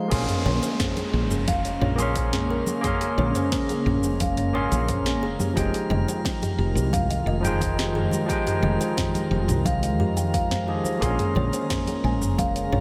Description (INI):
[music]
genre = sunset chillout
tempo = 88 BPM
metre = 4/4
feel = straight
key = Bb minor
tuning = A4 = 442 Hz
[part]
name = overdriven tine electric piano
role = accompaniment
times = 0.0-12.8 s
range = F3 to C6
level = -30 LUFS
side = equal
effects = analog delay
[part]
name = ethereal airy pad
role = sustained chords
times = 0.0-12.8 s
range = Db3 to F4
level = -33 LUFS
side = equal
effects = ensemble chorus, built-in reverb
[part]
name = kalimba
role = arpeggios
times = 0.0-12.8 s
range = G4 to Ab5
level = -33 LUFS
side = equal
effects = analog delay
[part]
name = drifting glass-harmonics texture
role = texture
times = 0.0-12.8 s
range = Bb4 to C6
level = -42 LUFS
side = equal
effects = chorus, built-in reverb
[part]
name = woody fretless electric bass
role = bass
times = 0.1-12.8 s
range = F1 to F2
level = -28 LUFS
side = equal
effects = none
[part]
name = electronic kick drum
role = drums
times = 0.1-12.5 s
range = none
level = -32 LUFS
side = equal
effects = none
[part]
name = smooth R&B drum kit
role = drums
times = 0.1-12.8 s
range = crash cymbal, hi-hat, shaker, snare drum, toms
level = -32 LUFS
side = equal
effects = none
[part]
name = downlifter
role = sound effects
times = 0.1-5.6 s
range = none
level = -38 LUFS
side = equal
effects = none
[part]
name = congas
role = percussion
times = 0.5-12.5 s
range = none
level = -36 LUFS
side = equal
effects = none
[sound]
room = moderate plate reverb, RT60 3.5 s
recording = dreamy mix soaked in reverb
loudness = -24 LUFS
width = mono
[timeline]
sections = 0.1-12.8 A section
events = none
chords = 0.1 Bbm9; 5.2 Fm9; 11.0 Bbm9